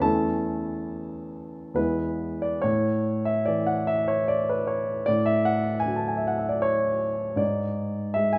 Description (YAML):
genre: classical, romantic nocturne for solo piano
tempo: 67-80 BPM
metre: 3/4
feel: rubato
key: A major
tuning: A4 = 437 Hz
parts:
  - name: warm grand piano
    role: solo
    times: 0.0-8.4 s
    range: E2 to A5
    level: -26 LUFS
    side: equal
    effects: none
room: moderate recital hall reverb, RT60 1.6 s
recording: none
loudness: -26 LUFS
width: mono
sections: 0.0-2.6 A section; 2.6-8.4 B section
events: none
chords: 0.0 A/E; 1.8 E; 2.6 A5; 5.1 A6; 7.4 N.C.